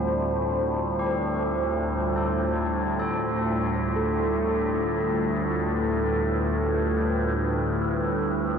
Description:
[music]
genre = dark ambient drone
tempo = 60 BPM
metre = 4/4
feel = straight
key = unclear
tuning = A4 = 442 Hz
[part]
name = dark analog pad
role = sustained chords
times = 0.0-8.6 s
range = G3 to G5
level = -29 LUFS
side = right 2 dB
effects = chorus
[part]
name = tubular bells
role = arpeggios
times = 0.0-8.6 s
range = D4 to A4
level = -34 LUFS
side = left 2 dB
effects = diffuse ambient delay
[part]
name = overtone-sweeping drone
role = drone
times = 0.0-8.6 s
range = D2 to A2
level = -25 LUFS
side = left 1 dB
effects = chorus, built-in reverb
[part]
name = quartz singing bowl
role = texture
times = 4.0-8.6 s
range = A4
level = -30 LUFS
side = right 2 dB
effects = none
[sound]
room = wet huge ambient reverb, RT60 8.5 s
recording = worn, warbling old tape, cassette tape, warbly pitch drift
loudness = -23 LUFS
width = side -7 dB against mid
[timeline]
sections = 0.0-8.6 A section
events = fade-out on analog synth pad 0.0-8.6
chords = 0.0 Fsus2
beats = 0.97 1.97 2.97 | 3.97 4.97 5.97 6.97 | 7.97

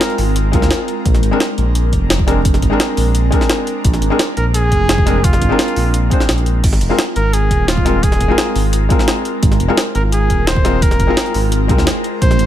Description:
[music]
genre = liquid drum and bass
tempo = 172 BPM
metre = 4/4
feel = straight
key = Ab lydian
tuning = A4 = 439 Hz
[part]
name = clear flugelhorn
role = melody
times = 0.0-0.2, 4.4-12.5 s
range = F4 to C5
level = -21 LUFS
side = right 1 dB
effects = tape echo
[part]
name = felt-muted upright piano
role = accompaniment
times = 0.0-12.2 s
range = Ab3 to C5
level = -19 LUFS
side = left 2 dB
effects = digital delay
[part]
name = airy breathy pad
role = sustained chords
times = 0.0-12.5 s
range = Ab3 to Bb4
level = -23 LUFS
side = equal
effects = chorus, phaser
[part]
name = jungle sampler-style drum kit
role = drums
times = 0.0-12.5 s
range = crash cymbal, hi-hat, snare drum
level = -19 LUFS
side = equal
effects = none
[part]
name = smooth synth bass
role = bass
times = 0.2-12.5 s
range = Eb1 to Eb2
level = -16 LUFS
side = equal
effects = none
[part]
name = electronic kick drum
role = drums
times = 0.5-12.3 s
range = none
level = -16 LUFS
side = equal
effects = none
[sound]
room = digital ambience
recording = none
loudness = -12 LUFS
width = side -12 dB against mid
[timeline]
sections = 0.0-12.5 A section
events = none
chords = 0.0 Ab69; 1.1 Bb9; 6.6 Ab69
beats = 0.01 0.36 0.71 | 1.06 1.40 1.75 2.10 | 2.45 2.80 3.15 3.50 | 3.85 4.20 4.54 4.89 | 5.24 5.59 5.94 6.29 | 6.64 6.99 7.33 7.68 | 8.03 8.38 8.73 9.08 | 9.43 9.78 10.12 10.47 | 10.82 11.17 11.52 11.87 | 12.22

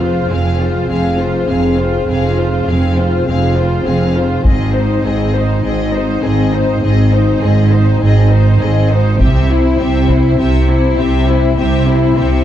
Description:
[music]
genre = cinematic, epic orchestral film score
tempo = 101 BPM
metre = 4/4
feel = straight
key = unclear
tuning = A4 = 441 Hz
[part]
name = rich symphonic violin section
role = melody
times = 0.0-12.4 s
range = C5 to F5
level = -22 LUFS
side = left 6 dB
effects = none
[part]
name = rich symphonic violin section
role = second line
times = 0.0-12.4 s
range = E4 to C5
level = -24 LUFS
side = left 4 dB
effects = none
[part]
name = rich studio viola section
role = accompaniment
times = 0.0-12.4 s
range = C4 to F4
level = -21 LUFS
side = right 1 dB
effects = none
[part]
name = mellow French horn section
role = sustained chords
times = 0.0-12.4 s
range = C4 to Ab4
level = -19 LUFS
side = left 4 dB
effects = none
[part]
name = clear symphonic double bass section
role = bass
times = 0.0-12.4 s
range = F1 to C2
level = -16 LUFS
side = right 2 dB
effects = none
[part]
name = rich symphonic cello section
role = bass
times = 0.0-12.4 s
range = F2 to C3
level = -16 LUFS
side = right 1 dB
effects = none
[part]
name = taiko ensemble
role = drums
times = 4.4-5.6, 9.2-10.4 s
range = none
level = -15 LUFS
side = equal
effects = none
[sound]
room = moderate scoring stage reverb, RT60 1.5 s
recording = dark, warm production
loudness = -11 LUFS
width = side -11 dB against mid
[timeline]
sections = 0.0-12.4 A section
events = build-up 0.0-12.4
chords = 0.0 Fm; 4.4 Ab; 9.2 C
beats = 0.29 0.88 1.48 | 2.07 2.67 3.26 3.85 | 4.45 5.04 5.63 6.23 | 6.82 7.41 8.01 8.60 | 9.20 9.79 10.38 10.98 | 11.57 12.16

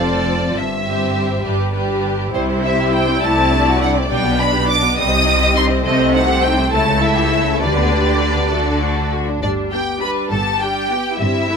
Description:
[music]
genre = quick classical-period movement for string orchestra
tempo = 68 BPM (dotted quarters)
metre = 6/8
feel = straight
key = G major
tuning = A4 = 440 Hz
[part]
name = rich symphonic violin section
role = melody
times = 0.0-11.6 s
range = C5 to Eb6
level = -19 LUFS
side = equal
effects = none
[part]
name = rich symphonic violin section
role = second line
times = 0.0-11.6 s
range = G3 to Eb5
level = -21 LUFS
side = left 1 dB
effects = none
[part]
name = clear symphonic viola section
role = accompaniment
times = 0.0-11.6 s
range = G3 to G4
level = -21 LUFS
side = left 1 dB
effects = none
[part]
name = clear symphonic cello section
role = bass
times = 0.0-11.6 s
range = F2 to D3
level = -23 LUFS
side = equal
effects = none
[part]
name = warm symphonic double bass section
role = bass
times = 0.0-11.6 s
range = F1 to D2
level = -21 LUFS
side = equal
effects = none
[sound]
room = light reverb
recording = minimal, uncompressed stereo recording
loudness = -14 LUFS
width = side -6 dB against mid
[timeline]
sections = 0.0-9.4 A section; 9.4-11.6 B section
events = none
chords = 0.0 F; 0.6 C/G; 1.4 G; 2.3 C; 3.2 D7/C; 4.1 G/B; 5.0 Cm; 5.8 Am7b5/C; 6.7 A/C#; 7.6 G/D; 8.5 D; 9.4 G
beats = | 0.56 1.45 | 2.34 3.23 | 4.11 4.98 | 5.85 6.73 | 7.62 8.52 | 9.43 10.31 | 11.20

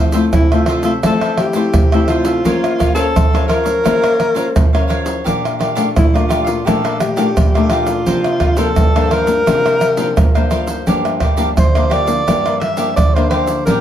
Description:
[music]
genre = samba and choro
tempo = 86 BPM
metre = 4/4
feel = straight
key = unclear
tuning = A4 = 440 Hz
[part]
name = cavaquinho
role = accompaniment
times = 0.0-13.8 s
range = D4 to G5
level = -22 LUFS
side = right 1 dB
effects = none
[part]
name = nylon-string guitar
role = accompaniment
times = 0.0-13.8 s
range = G2 to C5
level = -20 LUFS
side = left 4 dB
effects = none
[part]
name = egg shaker, pandeiro, surdo and tamborim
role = percussion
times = 0.1-13.8 s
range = none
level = -15 LUFS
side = right 1 dB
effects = none
[part]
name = breathy alto saxophone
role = melody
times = 0.3-13.8 s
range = E4 to E5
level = -17 LUFS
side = equal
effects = none
[sound]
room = wet studio ambience, RT60 0.5 s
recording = heard from further back in the room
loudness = -12 LUFS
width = side -10 dB against mid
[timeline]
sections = 0.0-13.8 A section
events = none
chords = 0.0 Fmaj7; 2.5 Bbmadd9; 5.3 Gm9/Bb; 8.1 C9sus4; 10.9 Gm7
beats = 0.34 1.04 1.75 | 2.45 3.15 3.86 4.56 | 5.26 5.96 6.67 7.37 | 8.07 8.77 9.47 10.17 | 10.87 11.57 12.27 12.97 | 13.68

